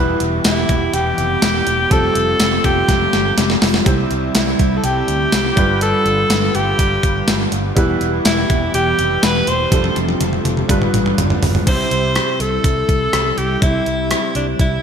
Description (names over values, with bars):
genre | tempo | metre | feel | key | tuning
1980s-style pop | 123 BPM | 4/4 | straight | C major | A4 = 438 Hz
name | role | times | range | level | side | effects
overdriven electric guitar | accompaniment | 0.0-12.2 s | E2 to C4 | -28 LUFS | equal | none
warm concert grand piano | accompaniment | 0.0-14.8 s | G2 to C5 | -23 LUFS | right 1 dB | lush chorus
warm analog pad | sustained chords | 0.0-14.8 s | C3 to B4 | -25 LUFS | equal | chorus
fretless electric bass | bass | 0.0-14.8 s | E1 to D2 | -22 LUFS | equal | none
clean 12-bit digital drum machine | drums | 0.2-14.7 s | crash cymbal, hi-hat, kick drum, rim click, snare drum, tambourine, toms | -17 LUFS | equal | gated reverb
bright alto saxophone | melody | 0.5-14.8 s | D4 to C5 | -19 LUFS | equal | none
marimba with medium hard mallets | second line | 0.5-10.0 s | E5 to C6 | -28 LUFS | left 4 dB | ping-pong delay
room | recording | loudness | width
moderate lush hall reverb, RT60 1.7 s | bright 1980s-style digital production | -14 LUFS | side -7 dB against mid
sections
0.0-11.7 A section; 11.7-14.8 B section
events
drum fill 2.9-3.9, 9.7-11.7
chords
0.0 Em; 1.9 Fadd9; 3.9 C; 5.6 G7; 7.8 Em; 9.7 Fadd9; 10.7 G7; 11.7 C